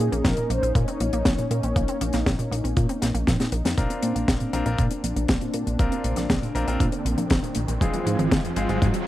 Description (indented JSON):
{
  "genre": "italo disco",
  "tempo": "119 BPM",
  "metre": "4/4",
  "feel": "straight",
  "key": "unclear",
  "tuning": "A4 = 441 Hz",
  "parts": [
    { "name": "mellow synth brass", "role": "melody", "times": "0.0-3.2 s", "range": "Ab4 to Db5", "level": "-30 LUFS", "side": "equal", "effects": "chorus, tape echo" },
    { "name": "warm analog pad", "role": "sustained chords", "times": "0.0-9.1 s", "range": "Ab3 to F4", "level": "-30 LUFS", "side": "left 1 dB", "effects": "chorus" },
    { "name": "wide unison pluck", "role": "arpeggios", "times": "0.0-9.0 s", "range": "F2 to C4", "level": "-32 LUFS", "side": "right 2 dB", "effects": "vintage 12-bit sampler grit, tape echo" },
    { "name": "chorused synth bass", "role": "bass", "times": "0.0-8.9 s", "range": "Ab1 to Bb2", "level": "-25 LUFS", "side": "equal", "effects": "none" },
    { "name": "deep reggae drum kit", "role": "drums", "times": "0.1-9.0 s", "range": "hi-hat, snare drum", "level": "-27 LUFS", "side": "left 1 dB", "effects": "studio reverb" },
    { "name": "electronic kick drum", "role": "drums", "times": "0.2-8.9 s", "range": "none", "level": "-25 LUFS", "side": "equal", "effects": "overdrive, studio reverb" },
    { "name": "bright grand piano", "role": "stabs", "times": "3.8-8.8 s", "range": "Ab3 to Bb4", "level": "-30 LUFS", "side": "left 3 dB", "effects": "tape echo" },
    { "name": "riser", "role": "sound effects", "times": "5.5-9.1 s", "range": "none", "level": "-33 LUFS", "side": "right 1 dB", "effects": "none" }
  ],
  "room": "little or no reverb",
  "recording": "dry, close 1970s-style studio recording",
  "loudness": "-21 LUFS",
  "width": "side -14 dB against mid",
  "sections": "0.0-3.8 A section; 3.8-9.1 B section",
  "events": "drum fill 3.0-3.8; band accent 3.7; riser 5.5-9.1",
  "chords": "0.0 Bbmadd9; 3.8 Bbadd9; 7.8 Fm/Ab"
}